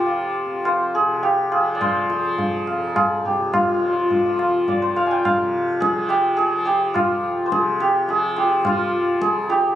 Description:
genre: indian classical, Hindustani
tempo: 105 BPM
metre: 3/4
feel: straight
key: F raga shivaranjani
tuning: A4 = 440 Hz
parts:
  - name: santur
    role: melody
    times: 0.0-9.8 s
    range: F4 to Ab5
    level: -19 LUFS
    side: equal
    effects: none
  - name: tanpura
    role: drone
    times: 0.0-9.8 s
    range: F2 to F3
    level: -28 LUFS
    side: left 1 dB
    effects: none
  - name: tabla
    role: percussion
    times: 0.1-9.7 s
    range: none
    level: -24 LUFS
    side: equal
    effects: none
room: light reverb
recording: recorded on a phone in the room, club reverb, nothing above 10.7 kHz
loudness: -18 LUFS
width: side -11 dB against mid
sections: 0.0-9.8 A section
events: speeding up 0.0-9.8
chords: none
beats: | 0.08 0.66 1.24 | 1.81 2.39 2.97 | 3.54 4.11 4.68 | 5.26 5.83 6.39 | 6.96 7.53 8.09 | 8.65 9.21

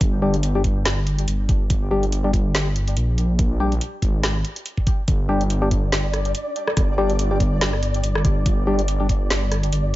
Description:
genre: deep dubstep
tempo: 142 BPM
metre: 4/4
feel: swing 56% on 16ths, half-time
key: G phrygian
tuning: A4 = 441 Hz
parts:
  - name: dark detuned saw bass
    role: bass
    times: 0.0-10.0 s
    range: G1 to Bb1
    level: -21 LUFS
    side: equal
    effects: none
  - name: electronic kick drum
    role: drums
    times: 0.0-9.2 s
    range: none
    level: -20 LUFS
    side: equal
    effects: none
  - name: garage drum kit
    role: drums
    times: 0.0-9.8 s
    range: hi-hat, rim click, snare drum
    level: -25 LUFS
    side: equal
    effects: none
  - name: percussive organ stab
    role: stabs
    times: 0.2-9.1 s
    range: G3 to G4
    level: -26 LUFS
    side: left 2 dB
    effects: chorus, cassette tape, dub echo
  - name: flickering grainy texture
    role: texture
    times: 5.6-10.0 s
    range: D5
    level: -29 LUFS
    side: left 1 dB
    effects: built-in reverb
room: little or no reverb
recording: nothing above 7.6 kHz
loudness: -18 LUFS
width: side -16 dB against mid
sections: 0.0-10.0 A section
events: none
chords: 0.0 G5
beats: | 0.01 0.43 0.85 1.28 | 1.70 2.12 2.54 2.97 | 3.39 3.81 4.24 4.66 | 5.08 5.50 5.92 6.35 | 6.77 7.19 7.62 8.04 | 8.46 8.88 9.30 9.73

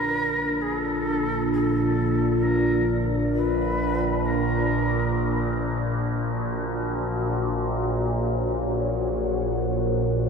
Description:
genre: dark ambient drone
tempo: free time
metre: none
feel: none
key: Bb double harmonic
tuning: A4 = 440 Hz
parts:
  - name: breathy shakuhachi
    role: melody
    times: 0.0-5.6 s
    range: A4 to Cb5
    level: -29 LUFS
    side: equal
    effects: ping-pong delay
  - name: dark analog pad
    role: sustained chords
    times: 0.0-10.3 s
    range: D4 to Gb5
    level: -27 LUFS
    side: left 1 dB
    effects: chorus
  - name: overtone-sweeping drone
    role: drone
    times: 0.0-10.3 s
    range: Bb1 to Bb2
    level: -24 LUFS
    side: right 1 dB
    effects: chorus, built-in reverb
room: wet huge ambient reverb, RT60 8.4 s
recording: none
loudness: -22 LUFS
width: side -5 dB against mid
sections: 0.0-10.3 A section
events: fade-out on analog synth pad 0.0-10.3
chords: 0.0 Bb; 6.1 Gb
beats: free time

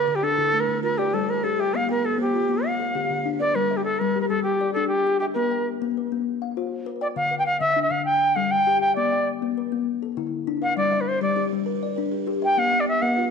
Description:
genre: southern african traditional, mbira-style interlocking cycle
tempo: 133 BPM (dotted quarters)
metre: 12/8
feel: straight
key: G equiheptatonic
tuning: A4 = 443 Hz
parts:
  - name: reedy Native American-style cedar flute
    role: melody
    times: 0.0-13.2 s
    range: G4 to G5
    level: -22 LUFS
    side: right 1 dB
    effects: none
  - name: buzzing kalimba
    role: arpeggios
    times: 0.0-3.7, 10.9-13.3 s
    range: D3 to D5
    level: -31 LUFS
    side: right 10 dB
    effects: none
  - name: kalimba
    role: arpeggios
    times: 0.0-13.3 s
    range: D3 to G5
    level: -26 LUFS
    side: left 11 dB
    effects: slapback echo
room: moderate echo chamber reverb, RT60 1.7 s, studio reverb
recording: 1960s-style stereo with parts hard left and right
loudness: -21 LUFS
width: side -6 dB against mid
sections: 0.0-3.6 A section; 3.6-13.3 B section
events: none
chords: 0.0 D5; 0.8 G5; 1.7 Bb; 2.6 Dm; 3.6 Gm; 5.4 Bb5; 7.2 Dmadd9; 8.1 G5; 9.0 Bb; 9.9 D5; 10.8 Gm; 12.6 Bb5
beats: 0.38 0.84 1.29 | 1.74 2.20 2.65 3.10 | 3.56 4.01 4.46 4.91 | 5.36 5.81 6.26 6.71 | 7.16 7.61 8.06 8.52 | 8.96 9.42 9.87 10.32 | 10.77 11.22 11.67 12.12 | 12.57 13.02

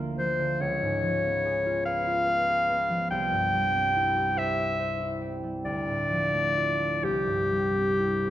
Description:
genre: classical, romantic duo for clarinet and harp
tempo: 39-48 BPM (dotted quarters)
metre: 6/8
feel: rubato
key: unclear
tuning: A4 = 436 Hz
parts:
  - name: concert harp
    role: accompaniment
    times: 0.0-8.3 s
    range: C2 to E5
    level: -30 LUFS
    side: right 2 dB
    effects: none
  - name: bright clarinet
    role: melody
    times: 0.2-8.3 s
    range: G4 to G5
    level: -25 LUFS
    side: left 1 dB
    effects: none
room: wet recital hall reverb, RT60 1.5 s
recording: dark, warm production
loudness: -24 LUFS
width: side -12 dB against mid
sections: 0.0-8.3 A section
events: none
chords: 0.0 Bb/D; 0.6 Db7; 3.1 C; 5.7 Dm; 7.0 C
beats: | 0.60 1.85 | 3.10 4.37 | 5.65 7.03

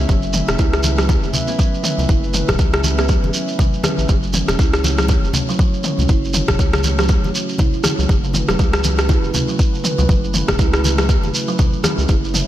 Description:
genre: afro house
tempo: 120 BPM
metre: 4/4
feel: swing 58% on 16ths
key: F# minor pentatonic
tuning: A4 = 438 Hz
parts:
  - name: dark analog pad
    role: sustained chords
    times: 0.0-12.5 s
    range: A3 to E5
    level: -26 LUFS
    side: equal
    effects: chorus, sidechain pumping
  - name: kalimba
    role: arpeggios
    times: 0.0-12.5 s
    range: C#3 to E4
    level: -24 LUFS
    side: right 3 dB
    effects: sidechain pumping, digital delay
  - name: round analog bass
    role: bass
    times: 0.0-12.4 s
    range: E1 to C#2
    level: -20 LUFS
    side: equal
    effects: tube saturation, sidechain pumping
  - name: electronic kick drum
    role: drums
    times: 0.1-12.2 s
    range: none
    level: -16 LUFS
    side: equal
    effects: overdrive
  - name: shekere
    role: percussion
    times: 0.1-12.5 s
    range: none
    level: -24 LUFS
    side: right 3 dB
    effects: none
  - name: deep house drum kit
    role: drums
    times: 0.3-12.5 s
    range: rim click, toms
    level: -22 LUFS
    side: equal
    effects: overdrive, gated reverb
  - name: congas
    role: percussion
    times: 0.3-12.5 s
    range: none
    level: -26 LUFS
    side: left 3 dB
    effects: none
room: light reverb, studio ambience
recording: bright 1980s-style digital production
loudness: -14 LUFS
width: side -13 dB against mid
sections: 0.0-12.5 A section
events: none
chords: 0.0 F#m7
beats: | 0.09 0.59 1.09 1.59 | 2.09 2.59 3.09 3.59 | 4.09 4.59 5.09 5.59 | 6.09 6.59 7.09 7.59 | 8.09 8.59 9.09 9.59 | 10.09 10.59 11.09 11.59 | 12.09

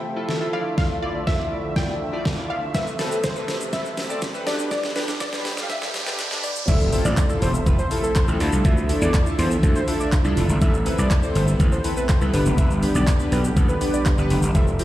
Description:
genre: dance-pop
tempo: 122 BPM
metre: 4/4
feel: straight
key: unclear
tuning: A4 = 441 Hz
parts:
  - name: wide unison pluck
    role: melody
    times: 0.0-6.7 s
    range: A4 to G5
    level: -30 LUFS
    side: equal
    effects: dub echo
  - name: filtered supersaw swell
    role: sustained chords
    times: 0.0-14.8 s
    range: B2 to E5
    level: -31 LUFS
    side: right 1 dB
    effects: sidechain pumping
  - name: riser and impact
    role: sound effects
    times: 1.2-8.6 s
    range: none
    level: -32 LUFS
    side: right 1 dB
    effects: none
  - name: chorused polysynth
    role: accompaniment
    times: 0.2-14.8 s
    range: B3 to D5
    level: -27 LUFS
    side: left 1 dB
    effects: sidechain pumping
  - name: pop drum kit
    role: drums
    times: 0.3-14.8 s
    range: crash cymbal, handclaps, hi-hat, kick drum, shaker, snare drum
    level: -22 LUFS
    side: equal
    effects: overdrive
  - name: fat analog lead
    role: melody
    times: 6.7-14.6 s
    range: A4 to E5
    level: -30 LUFS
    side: equal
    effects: sidechain pumping, dub echo
  - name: gritty slap bass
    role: bass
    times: 6.7-14.8 s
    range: E1 to E2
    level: -21 LUFS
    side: equal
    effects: overdrive, sidechain pumping
room: little or no reverb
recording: played on a big sound system in a bare room, large studio reverb, high-pass filter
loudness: -19 LUFS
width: side -14 dB against mid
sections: 0.0-6.7 A section; 6.7-14.8 B section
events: build-up 0.0-6.7; drum fill 0.0-6.7; filter sweep 0.0-6.7; riser 1.2-6.7; drop 6.7-14.8; impact 6.7-8.6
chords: 0.0 Fmaj7; 0.5 Dmadd9; 2.7 Amadd9; 4.5 G; 6.7 Fmaj7; 8.4 Dmadd9; 10.6 Amadd9; 12.3 G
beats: 0.29 | 0.78 1.27 1.76 2.25 | 2.75 3.24 3.73 4.22 | 4.71 5.21 5.70 6.19 | 6.68 7.17 7.66 8.16 | 8.65 9.14 9.63 10.12 | 10.62 11.11 11.60 12.09 | 12.58 13.07 13.56 14.06 | 14.55

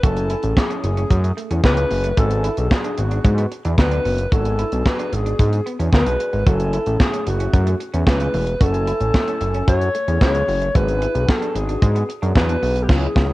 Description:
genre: early-eighties boogie funk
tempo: 112 BPM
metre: 4/4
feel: straight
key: unclear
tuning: A4 = 442 Hz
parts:
  - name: breathy alto saxophone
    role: melody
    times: 0.0-13.3 s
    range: F#4 to C#5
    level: -23 LUFS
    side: equal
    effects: cassette tape, tape echo
  - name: mellow synth brass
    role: accompaniment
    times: 0.0-13.3 s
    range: A3 to G#5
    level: -29 LUFS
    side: left 3 dB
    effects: chorus, cassette tape
  - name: electric guitar through a small old amp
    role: riff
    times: 0.0-12.7 s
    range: G#3 to F#4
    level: -32 LUFS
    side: right 4 dB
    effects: lush chorus, cassette tape
  - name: fat analog bass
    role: bass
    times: 0.0-13.3 s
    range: E1 to G#2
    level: -20 LUFS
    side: equal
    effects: none
  - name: tight funk drum kit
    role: drums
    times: 0.0-13.3 s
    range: crash cymbal, handclaps, hi-hat, kick drum, snare drum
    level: -18 LUFS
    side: equal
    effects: cassette tape
room: light reverb, small room ambience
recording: home recording on cassette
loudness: -16 LUFS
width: side -18 dB against mid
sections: 0.0-13.3 A section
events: band accent 12.9-13.3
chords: 0.0 F#m9; 2.2 G#m7b5; 6.5 F#m9; 10.7 G#m7b5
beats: | 0.04 0.57 1.11 1.64 | 2.18 2.71 3.25 3.79 | 4.32 4.86 5.39 5.93 | 6.46 7.00 7.54 8.07 | 8.61 9.14 9.68 10.21 | 10.75 11.29 11.82 12.36 | 12.89

